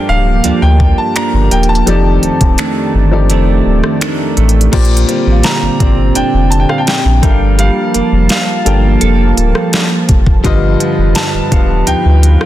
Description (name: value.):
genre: contemporary R&B.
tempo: 84 BPM.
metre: 4/4.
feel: straight.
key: Bb major.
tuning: A4 = 440 Hz.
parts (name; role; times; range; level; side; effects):
clear baby grand piano; melody; 0.0-12.5 s; F5 to Bb5; -19 LUFS; left 2 dB; tape echo.
warm baby grand piano; accompaniment; 0.0-12.5 s; Bb2 to G5; -18 LUFS; left 6 dB; none.
warm analog pad; sustained chords; 0.0-12.5 s; D3 to A5; -18 LUFS; right 1 dB; chorus.
direct-recorded clean electric guitar; arpeggios; 0.0-12.5 s; F2 to A4; -18 LUFS; right 10 dB; lush chorus, tape echo.
small celesta; texture; 0.0-7.8 s; C5 to F5; -29 LUFS; right 1 dB; none.
saturated sub bass; bass; 0.1-12.4 s; D1 to D2; -11 LUFS; equal; none.
smooth R&B drum kit; drums; 0.4-12.5 s; crash cymbal, finger snaps, hi-hat, kick drum, rim click, snare drum; -14 LUFS; equal; soft clipping on snare.
room: digital ambience.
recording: dense, heavily limited modern master.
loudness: -9 LUFS.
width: side -13 dB against mid.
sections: 0.0-4.7 A section; 4.7-12.5 B section.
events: kick muted 3.3-4.7.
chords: 0.0 Gm7; 1.9 F13; 4.7 Bb69; 7.2 Gm9; 10.4 G7b13.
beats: 0.44 1.16 | 1.87 2.59 3.30 4.01 | 4.73 5.44 6.16 6.87 | 7.59 8.30 9.01 9.73 | 10.44 11.16 11.87.